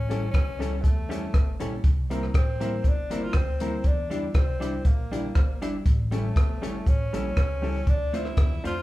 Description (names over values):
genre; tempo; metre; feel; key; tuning
ska; 120 BPM; 4/4; swing 54% on 8ths; unclear; A4 = 440 Hz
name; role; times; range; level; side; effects
clear tenor saxophone; melody; 0.0-8.8 s; A3 to F4; -34 LUFS; left 1 dB; none
upright bass; bass; 0.0-8.8 s; G1 to F2; -32 LUFS; equal; none
semi-hollow electric guitar; accompaniment; 0.1-8.8 s; G3 to F4; -34 LUFS; right 1 dB; warbly pitch drift
clear upright piano; stabs; 0.1-8.8 s; C4 to C5; -36 LUFS; left 2 dB; none
compact cocktail drum kit; drums; 0.1-8.8 s; hi-hat, kick drum, rim click; -23 LUFS; equal; none
room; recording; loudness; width
moderate large studio reverb, RT60 0.9 s; band playing live in one room; -23 LUFS; side -17 dB against mid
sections
0.0-8.8 A section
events
none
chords
0.0 A7; 1.8 C7; 3.8 Em7b5; 5.9 A7; 7.9 Dm7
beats
0.34 0.84 1.34 | 1.84 2.34 2.85 3.35 | 3.85 4.35 4.85 5.35 | 5.86 6.36 6.86 7.36 | 7.87 8.37